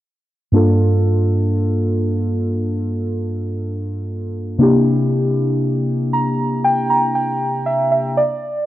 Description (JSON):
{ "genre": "R&B", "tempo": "59 BPM", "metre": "4/4", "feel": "straight", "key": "G minor", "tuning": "A4 = 445 Hz", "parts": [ { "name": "muted felt-like synth keys", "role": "accompaniment", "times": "0.5-8.7 s", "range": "G2 to Bb5", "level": "-16 LUFS", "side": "equal", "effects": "chorus" } ], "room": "moderate plate reverb, RT60 2.5 s", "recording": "none", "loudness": "-16 LUFS", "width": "side -14 dB against mid", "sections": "0.5-8.7 A section", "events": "synth keys fill 5.6-8.7", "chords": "0.5 Gm7; 4.6 C7; 8.2 N.C.", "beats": "| 0.53 1.55 2.56 3.58 | 4.60 5.61 6.63 7.65" }